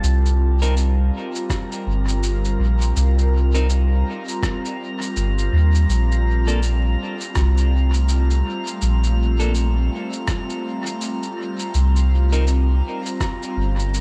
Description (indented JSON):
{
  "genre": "ambient dub",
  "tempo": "82 BPM",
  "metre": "4/4",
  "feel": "swing 60% on 16ths",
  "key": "unclear",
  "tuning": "A4 = 440 Hz",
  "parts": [
    { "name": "airy breathy pad", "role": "sustained chords", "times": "0.0-14.0 s", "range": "G3 to Bb4", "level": "-29 LUFS", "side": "equal", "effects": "chorus, phaser" },
    { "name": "soft dub sub bass", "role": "bass", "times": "0.0-14.0 s", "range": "G1 to Eb2", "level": "-19 LUFS", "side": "equal", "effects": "tube saturation" },
    { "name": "electronic cabasa and rim click", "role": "drums", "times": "0.0-14.0 s", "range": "none", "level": "-34 LUFS", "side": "equal", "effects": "overdrive, dub echo" },
    { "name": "drifting glass-harmonics texture", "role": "texture", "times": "0.0-14.0 s", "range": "Bb5", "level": "-36 LUFS", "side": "equal", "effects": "chorus, built-in reverb" },
    { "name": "clean electric guitar", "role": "stabs", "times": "0.6-12.4 s", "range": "Bb3 to Bb4", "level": "-34 LUFS", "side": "equal", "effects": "dub echo" },
    { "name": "electronic kick drum", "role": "drums", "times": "1.5-13.4 s", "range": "none", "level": "-27 LUFS", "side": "equal", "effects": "overdrive" }
  ],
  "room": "digital ambience",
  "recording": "echo-heavy mix",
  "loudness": "-20 LUFS",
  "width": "mono",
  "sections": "0.0-14.0 A section",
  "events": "none",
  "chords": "0.0 C7(no3); 5.9 Bbmaj7(no3); 11.7 C7(no3)",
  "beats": "| 0.04 0.77 1.50 2.23 | 2.96 3.70 4.43 5.16 | 5.89 6.62 7.36 8.09 | 8.82 9.55 10.28 11.01 | 11.74 12.48 13.21 13.94"
}